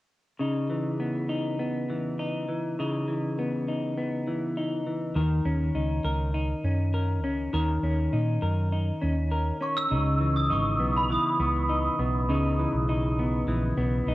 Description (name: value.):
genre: indie pop, bedroom pop.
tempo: 101 BPM.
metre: 4/4.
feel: straight.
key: C# dorian.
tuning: A4 = 440 Hz.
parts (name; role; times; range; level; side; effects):
semi-hollow electric guitar; accompaniment; 0.4-14.1 s; C#3 to A#4; -28 LUFS; left 1 dB; wide subtle chorus, vibrato effect, plate reverb.
hollow-body short-scale fingered electric bass; bass; 5.2-14.1 s; G#1 to A#2; -27 LUFS; equal; none.
glockenspiel with soft plastic mallets; melody; 9.6-12.0 s; B5 to E6; -28 LUFS; right 1 dB; ensemble chorus, slapback echo, plate reverb.
room: moderate small room ambience, RT60 0.5 s.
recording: worn, warbling old tape, cassette tape, warbly pitch drift.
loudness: -25 LUFS.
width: side -17 dB against mid.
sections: 0.4-9.9 A section; 9.9-14.1 B section.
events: none.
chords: 0.4 C#m9; 5.2 D#m7; 9.9 C#m9.